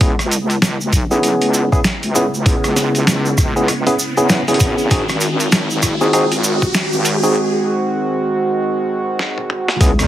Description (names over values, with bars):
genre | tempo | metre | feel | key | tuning
glitch hop | 98 BPM | 4/4 | swing 60% on 16ths | unclear | A4 = 440 Hz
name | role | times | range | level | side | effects
warm analog pad | sustained chords | 0.0-10.1 s | C#3 to F#4 | -21 LUFS | right 1 dB | chorus, sidechain pumping
barky tine electric piano | stabs | 0.0-9.9 s | B3 to B4 | -17 LUFS | equal | sidechain pumping, low-pass filter, digital delay
wobble bass | bass | 0.0-10.1 s | F#1 to E2 | -20 LUFS | equal | chorus, overdrive, high-pass filter
boom bap sampler-style drum kit | drums | 0.0-10.1 s | hi-hat, rim click, snare drum, toms | -18 LUFS | equal | none
electronic kick drum | drums | 0.0-10.0 s | none | -16 LUFS | equal | none
cabasa | percussion | 0.0-10.1 s | none | -24 LUFS | right 2 dB | none
riser | sound effects | 2.0-7.4 s | none | -24 LUFS | equal | none
room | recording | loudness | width
moderate studio reverb, RT60 0.5 s | heavily compressed radio sound, multiband compression, high-pass filter | -14 LUFS | side -12 dB against mid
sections
0.0-9.8 A section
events
build-up 0.0-9.8; filter sweep on analog synth pad 0.0-9.8; riser 2.0-7.4; break 7.4-9.8; drum fill 9.2-9.8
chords
0.0 C#m7; 4.9 G#7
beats
| 0.01 0.62 1.24 1.85 | 2.46 3.07 3.68 4.30 | 4.91 5.52 6.13 6.75 | 7.36 7.97 8.58 9.20 | 9.81